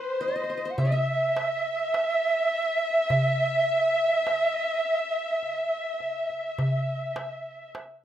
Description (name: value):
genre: Arabic maqam ensemble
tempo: 103 BPM (eighths)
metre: 10/8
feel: straight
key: unclear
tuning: A4 = 440 Hz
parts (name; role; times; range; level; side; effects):
- breathy ney; melody; 0.0-7.7 s; B4 to F#5; -28 LUFS; right 4 dB; none
- dark studio violin section; second line; 0.0-7.7 s; C5 to E5; -27 LUFS; left 1 dB; none
- qanun; second line; 0.0-7.7 s; B4 to E5; -39 LUFS; right 1 dB; none
- darbuka; percussion; 0.2-8.0 s; none; -28 LUFS; equal; none
room: wet studio reverb, RT60 0.6 s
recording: rough home demo mix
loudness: -24 LUFS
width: side -11 dB against mid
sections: 0.0-8.0 A section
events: none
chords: none